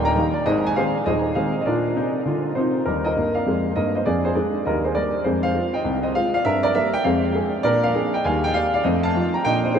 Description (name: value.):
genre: jazz, stride piano.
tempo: 200 BPM.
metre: 4/4.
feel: swing 64% on 8ths.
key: Eb major.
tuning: A4 = 440 Hz.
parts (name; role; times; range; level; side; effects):
warm baby grand piano; solo; 0.0-9.8 s; Eb1 to Bb5; -19 LUFS; equal; lush chorus, analog delay.
room: wet huge ambient reverb, RT60 8.3 s.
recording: dreamy mix soaked in reverb.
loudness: -19 LUFS.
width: side -7 dB against mid.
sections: 0.0-2.8 A section; 2.8-9.8 B section.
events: none.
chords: 0.5 Ab6; 1.7 Bb; 2.8 Eb; 4.0 Ddim/F; 4.6 Eb; 5.2 Fm; 6.4 Edim/G; 7.0 Fm; 7.6 Bb7; 8.2 Eb; 8.8 F7.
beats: 0.15 | 0.45 0.75 1.05 1.35 | 1.65 1.95 2.25 2.55 | 2.85 3.15 3.45 3.75 | 4.05 4.35 4.65 4.95 | 5.25 5.54 5.84 6.14 | 6.44 6.74 7.04 7.34 | 7.64 7.94 8.24 8.54 | 8.84 9.14 9.44 9.74.